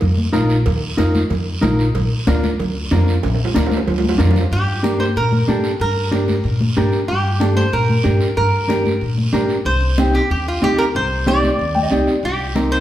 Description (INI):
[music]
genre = latin, cumbia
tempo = 187 BPM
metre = 4/4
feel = straight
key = G minor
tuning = A4 = 440 Hz
[part]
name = upright bass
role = bass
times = 0.0-12.7 s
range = Bb1 to Bb2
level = -19 LUFS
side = equal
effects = none
[part]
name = congas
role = percussion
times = 0.0-12.7 s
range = none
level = -23 LUFS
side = left 1 dB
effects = none
[part]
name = cowbell and timbales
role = percussion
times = 0.0-4.5 s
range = none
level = -26 LUFS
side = right 4 dB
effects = none
[part]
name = guiro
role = percussion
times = 0.0-12.8 s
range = none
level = -32 LUFS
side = right 3 dB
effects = none
[part]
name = mellow electric guitar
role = accompaniment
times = 0.3-12.8 s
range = C4 to G5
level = -20 LUFS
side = equal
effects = none
[part]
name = lap resonator guitar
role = melody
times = 4.5-12.8 s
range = F4 to D5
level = -21 LUFS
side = right 1 dB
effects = none
[sound]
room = wet large studio reverb, RT60 1.4 s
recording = heard from further back in the room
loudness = -15 LUFS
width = side -12 dB against mid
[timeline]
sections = 0.0-4.5 A section; 4.5-12.8 B section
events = drum fill 3.2-4.5; clean electric guitar fill 11.6-12.2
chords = 0.0 Ebsus2; 1.9 Bb; 4.5 Gm; 9.7 Cmadd9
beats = 0.02 0.34 | 0.66 0.98 1.31 1.63 | 1.95 2.27 2.59 2.91 | 3.23 3.55 3.87 4.20 | 4.52 4.84 5.16 5.48 | 5.80 6.12 6.45 6.77 | 7.09 7.41 7.73 8.05 | 8.38 8.70 9.02 9.34 | 9.66 9.98 10.30 10.63 | 10.95 11.27 11.59 11.91 | 12.24 12.56